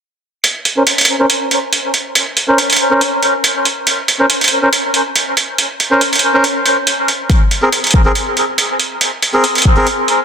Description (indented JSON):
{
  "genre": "deep dubstep",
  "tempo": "140 BPM",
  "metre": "4/4",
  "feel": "swing 54% on 16ths, half-time",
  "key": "Bb minor",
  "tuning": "A4 = 440 Hz",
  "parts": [
    { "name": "electronic hi-hat", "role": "drums", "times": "0.4-10.2 s", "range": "none", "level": "-14 LUFS", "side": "right 2 dB", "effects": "overdrive" },
    { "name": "melodica", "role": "stabs", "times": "0.8-9.9 s", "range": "C4 to C5", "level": "-14 LUFS", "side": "equal", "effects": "low-pass filter, dub echo" },
    { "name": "electronic kick drum", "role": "drums", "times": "7.3-9.7 s", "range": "none", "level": "-11 LUFS", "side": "equal", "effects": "none" }
  ],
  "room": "moderate lush hall reverb, RT60 1.8 s",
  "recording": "dense, heavily limited modern master",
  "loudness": "-11 LUFS",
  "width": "side -7 dB against mid",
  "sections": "0.4-10.2 A section",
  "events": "filter sweep on melodica 0.4-10.2",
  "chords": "0.4 Bbmadd9; 7.3 Abadd9"
}